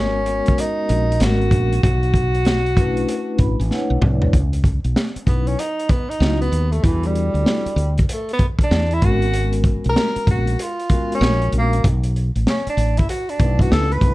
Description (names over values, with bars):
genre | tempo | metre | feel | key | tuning
hip hop, jazz-hop | 96 BPM | 4/4 | swing 65% on 16ths | C# minor | A4 = 440 Hz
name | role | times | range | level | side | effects
breathy tenor saxophone | melody | 0.0-14.1 s | E3 to B4 | -23 LUFS | right 1 dB | none
vibraphone with soft mallets | accompaniment | 0.0-14.1 s | F#3 to B5 | -25 LUFS | left 2 dB | none
woody fretless electric bass | bass | 0.0-14.1 s | G#1 to E2 | -19 LUFS | equal | none
crunchy breakbeat drum kit | drums | 0.3-14.1 s | hi-hat, kick drum, snare drum, toms | -19 LUFS | equal | none
room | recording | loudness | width
small room ambience | dark, warm production | -16 LUFS | side -18 dB against mid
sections
0.0-4.3 A section; 4.3-14.1 B section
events
vibraphone fill 3.1-4.3; drum fill 3.7-4.3; tenor saxophone solo 4.3-14.1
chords
0.0 G#m11; 1.8 Bm11; 4.3 C#m11; 6.8 Em11; 9.0 G#m11; 11.8 Bm11